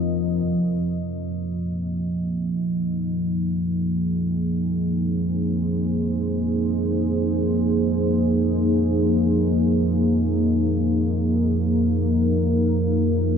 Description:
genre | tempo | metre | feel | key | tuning
ambient | free time | none | none | F minor | A4 = 440 Hz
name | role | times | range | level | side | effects
dark analog pad | sustained chords | 0.0-13.4 s | F3 to Eb5 | -22 LUFS | equal | chorus
deep rumbling drone | drone | 0.0-13.4 s | F2 to F3 | -23 LUFS | equal | built-in reverb
room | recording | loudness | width
wet cathedral reverb, RT60 7.3 s | dark, warm production | -20 LUFS | side -7 dB against mid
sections
0.5-13.4 A section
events
none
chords
0.0 F7sus4

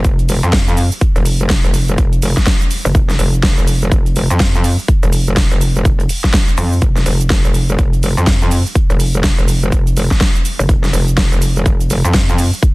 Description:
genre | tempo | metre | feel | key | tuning
bass house | 124 BPM | 4/4 | swing 60% on 16ths | unclear | A4 = 440 Hz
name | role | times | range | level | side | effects
metallic wobble bass | bass | 0.0-12.5 s | F1 to F2 | -14 LUFS | equal | distortion, chorus, overdrive, sidechain pumping
big-room dance drum kit | drums | 0.0-12.7 s | hi-hat, shaker, snare drum | -20 LUFS | equal | none
electronic kick drum | drums | 0.0-12.7 s | none | -14 LUFS | equal | none
room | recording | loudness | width
little or no reverb | dense, heavily limited modern master, lossy compression artefacts | -11 LUFS | side -23 dB against mid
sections
0.0-12.7 A section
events
none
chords
none

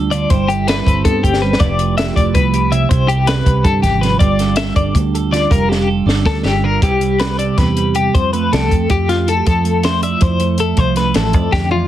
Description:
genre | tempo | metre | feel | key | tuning
math rock and midwest emo | 321 BPM (eighths) | 7/8 | straight | C major | A4 = 441 Hz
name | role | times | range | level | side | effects
twelve-string electric guitar | accompaniment | 0.0-11.9 s | C3 to D5 | -18 LUFS | right 7 dB | phaser
fingered electric bass | bass | 0.0-11.9 s | F1 to G2 | -18 LUFS | equal | none
twelve-string electric guitar | arpeggios | 0.1-11.9 s | F4 to E5 | -18 LUFS | left 5 dB | tremolo
compact cocktail drum kit | drums | 0.1-11.8 s | hi-hat, kick drum, snare drum, toms | -17 LUFS | equal | none
room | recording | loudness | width
light reverb | heavily compressed radio sound, multiband compression | -12 LUFS | side -12 dB against mid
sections
0.0-6.8 A section; 6.8-11.9 B section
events
drum fill 1.3, 5.7-6.8, 11.5-11.9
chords
0.3 Cmaj7/G; 1.6 Fmaj9#11; 2.9 Cmaj9; 4.2 Gm9; 6.8 Cmaj9; 8.1 Fadd9; 9.5 Dm9/F

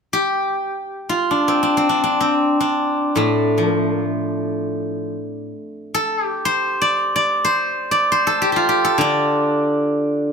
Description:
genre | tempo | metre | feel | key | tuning
chinese traditional, Chinese solo plucked strings | free time | none | none | D yu mode | A4 = 440 Hz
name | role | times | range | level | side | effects
steel-string zither | solo | 0.1-10.3 s | A2 to D5 | -17 LUFS | equal | none
room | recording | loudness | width
light reverb | close, detailed microphones | -16 LUFS | side -5 dB against mid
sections
0.0-10.3 A section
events
none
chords
none

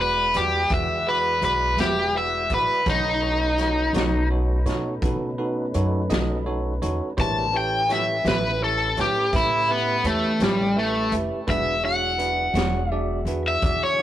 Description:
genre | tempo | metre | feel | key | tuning
slow blues | 56 BPM (dotted quarters) | 12/8 | straight | E mixolydian | A4 = 440 Hz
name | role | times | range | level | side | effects
cranked stack guitar | melody | 0.0-14.0 s | G3 to A5 | -22 LUFS | left 1 dB | overdrive, analog delay
bell-like tine electric piano | accompaniment | 0.0-14.0 s | D4 to E5 | -30 LUFS | right 3 dB | none
tonewheel organ | sustained chords | 0.0-14.0 s | F#3 to F#5 | -34 LUFS | left 1 dB | slow rotary speaker
upright bass | bass | 0.0-14.0 s | E1 to B2 | -27 LUFS | equal | none
vintage drum kit | drums | 0.3-13.8 s | hi-hat, kick drum, snare drum | -28 LUFS | equal | none
room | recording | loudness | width
moderate small room reverb, RT60 0.5 s | rough rehearsal-room recording, tube saturation | -20 LUFS | side -12 dB against mid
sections
0.0-14.0 A section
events
overdriven electric guitar solo 0.0-14.0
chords
0.0 E9; 2.9 B9; 7.2 A9; 11.5 E9

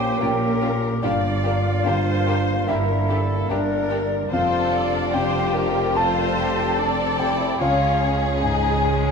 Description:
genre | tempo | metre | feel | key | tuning
cinematic, emotional film score for orchestra | 73 BPM | 4/4 | rubato | unclear | A4 = 441 Hz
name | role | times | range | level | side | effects
large flute ensemble | second line | 0.0-9.1 s | D5 to A5 | -28 LUFS | right 1 dB | none
mellow clarinet | second line | 0.0-9.1 s | D4 to A4 | -30 LUFS | left 2 dB | none
dark concert grand piano | accompaniment | 0.0-9.1 s | Db2 to A5 | -25 LUFS | left 2 dB | none
rich studio viola section | accompaniment | 0.0-9.1 s | Ab3 to D5 | -28 LUFS | equal | none
mellow French horn section | sustained chords | 0.0-9.1 s | G3 to D4 | -29 LUFS | left 3 dB | none
warm studio cello section | bass | 0.0-9.1 s | F2 to Db3 | -29 LUFS | right 5 dB | none
warm studio double bass section | bass | 0.0-9.1 s | F1 to Db2 | -27 LUFS | right 3 dB | none
dark symphonic violin section | melody | 0.2-9.1 s | F4 to A4 | -29 LUFS | left 4 dB | none
warm symphonic violin section | second line | 0.2-9.1 s | Bb3 to Ab4 | -30 LUFS | left 2 dB | none
room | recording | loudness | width
wet scoring stage reverb, RT60 2.0 s | minimal, uncompressed stereo recording | -19 LUFS | side -5 dB against mid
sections
0.0-9.1 A section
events
none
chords
0.0 Bbm; 1.0 Gm; 4.3 Fsus2; 7.6 Db

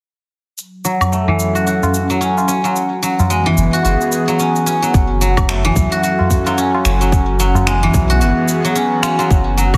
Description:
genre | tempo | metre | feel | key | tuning
organic downtempo | 110 BPM | 4/4 | swing 59% on 16ths | F# minor | A4 = 441 Hz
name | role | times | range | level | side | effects
airy breathy pad | sustained chords | 0.8-9.8 s | E3 to A4 | -22 LUFS | equal | chorus, sidechain pumping
electronic shaker, woodblock and finger snaps | drums | 0.6-9.8 s | none | -25 LUFS | equal | none
guzheng | arpeggios | 0.8-9.8 s | E3 to F#4 | -20 LUFS | equal | low-pass filter, tape echo
tabla | percussion | 1.0-9.8 s | none | -24 LUFS | equal | none
warm sub bass | bass | 3.6-9.8 s | F#1 to B1 | -19 LUFS | equal | sidechain pumping
electronic kick drum | drums | 4.9-9.8 s | none | -17 LUFS | equal | none
room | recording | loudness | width
moderate echo chamber reverb, RT60 1.5 s, digital ambience | heavily compressed radio sound, multiband compression | -15 LUFS | mono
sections
0.6-4.9 A section; 4.9-9.8 B section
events
filter sweep on analog synth pad 0.6-4.9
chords
0.6 F#m7; 2.8 E; 4.9 F#m7; 7.1 E/F#

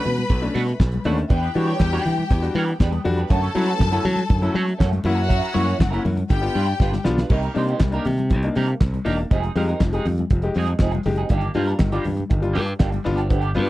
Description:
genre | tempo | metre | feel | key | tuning
disco | 120 BPM | 4/4 | straight | B minor, C minor from 7.3 s | A4 = 439 Hz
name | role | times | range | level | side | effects
rich studio string section | second line | 0.0-7.0 s | F#4 to B5 | -28 LUFS | left 4 dB | none
clean electric guitar | accompaniment | 0.0-13.7 s | F3 to C#5 | -29 LUFS | right 5 dB | wah, harmonic tremolo
clear grand piano | accompaniment | 0.0-13.7 s | G2 to G4 | -26 LUFS | left 3 dB | none
damped 70s drum kit | drums | 0.0-13.7 s | crash cymbal, handclaps, hi-hat, kick drum, snare drum | -19 LUFS | equal | none
modern bright fingered electric bass | bass | 0.1-13.7 s | E1 to F#3 | -22 LUFS | equal | none
congas | percussion | 0.1-13.7 s | none | -30 LUFS | left 5 dB | none
room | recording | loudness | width
little or no reverb | dry, close 1970s-style studio recording | -18 LUFS | side -16 dB against mid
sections
0.0-7.3 A section; 7.3-13.7 A section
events
drum fill 6.8-7.3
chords
0.0 Bm7; 1.3 Em7; 3.3 Dmaj7/F#; 5.1 F#7; 6.3 G7; 7.3 Cm7; 9.3 Fm7; 11.3 Ebmaj7/G; 13.1 G7

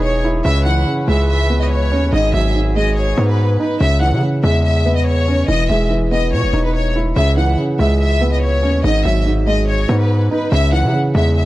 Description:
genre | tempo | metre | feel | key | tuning
hip hop | 143 BPM | 4/4 | half-time | C# minor | A4 = 440 Hz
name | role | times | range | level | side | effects
rich studio violin section | melody | 0.0-11.5 s | B4 to F#5 | -20 LUFS | left 1 dB | analog delay
felt-muted upright piano | accompaniment | 0.0-11.5 s | G#2 to E4 | -18 LUFS | right 2 dB | none
dark brass ensemble | sustained chords | 0.0-3.8 s | E3 to B4 | -28 LUFS | right 1 dB | none
hard-hitting 808-style bass | bass | 0.0-11.5 s | E1 to C#3 | -16 LUFS | equal | none
room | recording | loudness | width
small room ambience | dry, gritty hardware recording | -13 LUFS | side -16 dB against mid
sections
0.0-3.8 A section; 3.8-11.5 B section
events
none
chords
0.4 C#m7; 2.1 G#m7; 3.8 C#m7; 5.5 Emaj7; 7.2 C#m7; 8.8 G#m7; 10.5 C#m

